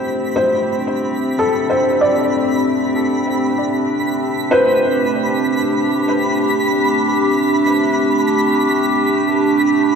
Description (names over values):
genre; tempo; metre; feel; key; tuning
ambient; free time; none; none; unclear; A4 = 439 Hz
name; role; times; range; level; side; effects
warbly tape-like pad; sustained chords; 0.0-10.0 s; A3 to G4; -16 LUFS; equal; chorus, built-in reverb
felt-muted upright piano; arpeggios; 0.0-10.0 s; A4 to D5; -19 LUFS; left 1 dB; ping-pong delay
twinkling granular texture; texture; 0.0-10.0 s; B5; -22 LUFS; right 1 dB; built-in reverb
room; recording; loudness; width
wet lush hall reverb, RT60 3.0 s; none; -14 LUFS; side -6 dB against mid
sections
0.0-10.0 A section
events
fade-in on ambient pad 0.0-10.0; fade-in on synth texture 0.0-10.0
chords
0.0 D5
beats
free time